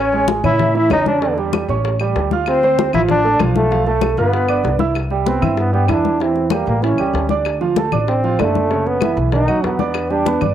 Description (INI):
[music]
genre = Afro-Cuban jazz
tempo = 192 BPM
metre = 4/4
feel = straight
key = C major from 5.0 s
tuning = A4 = 443 Hz
[part]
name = bright trombone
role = melody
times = 0.0-10.4 s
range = A3 to E4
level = -19 LUFS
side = equal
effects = cassette tape
[part]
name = breathy silver concert flute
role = second line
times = 0.0-4.8 s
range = A4 to E5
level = -23 LUFS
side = left 7 dB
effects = cassette tape
[part]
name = warm concert grand piano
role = accompaniment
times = 0.0-10.5 s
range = C#3 to F6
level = -19 LUFS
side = right 6 dB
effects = cassette tape
[part]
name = upright bass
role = bass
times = 0.0-10.5 s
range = F#1 to A2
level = -21 LUFS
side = left 1 dB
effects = tube saturation
[part]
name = bongos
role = percussion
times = 0.1-10.5 s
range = none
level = -29 LUFS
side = left 9 dB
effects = none
[part]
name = congas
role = percussion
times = 0.1-10.5 s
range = none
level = -23 LUFS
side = left 8 dB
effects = none
[part]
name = claves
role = percussion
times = 0.4-10.5 s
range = none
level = -32 LUFS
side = left 9 dB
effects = none
[sound]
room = moderate spring reverb, RT60 1.9 s, studio reverb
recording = home recording on cassette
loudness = -14 LUFS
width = side -10 dB against mid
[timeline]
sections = 0.0-5.0 A section; 5.0-10.5 B section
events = trombone solo 5.0-10.5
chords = 0.0 Amaj7; 1.2 A7sus4; 1.8 A7; 2.5 Dm7; 3.7 G9; 4.3 G7; 5.0 Cmaj7; 6.2 Am7; 6.8 A7; 7.5 Dm7; 8.7 F#5; 9.3 B; 9.9 Em7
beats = 0.28 0.60 0.91 | 1.22 1.53 1.84 2.15 | 2.47 2.78 3.09 3.40 | 3.71 4.02 4.33 4.65 | 4.96 5.27 5.58 5.89 | 6.21 6.52 6.83 7.14 | 7.45 7.76 8.08 8.39 | 8.70 9.01 9.32 9.64 | 9.95 10.26